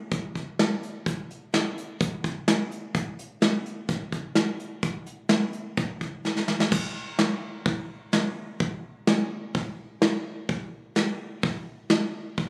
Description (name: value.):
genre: country.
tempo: 127 BPM.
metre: 4/4.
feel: straight.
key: none.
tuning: none.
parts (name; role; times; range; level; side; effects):
soft brush drum kit; drums; 0.1-12.5 s; crash cymbal, hi-hat, kick drum, snare drum; -28 LUFS; equal; none.
room: wet plate reverb, RT60 2.0 s.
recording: recorded on a phone in the room, club reverb.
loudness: -28 LUFS.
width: mono.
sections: 0.0-6.7 A section; 6.7-12.5 B section.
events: drum fill 6.2-6.7.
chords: none.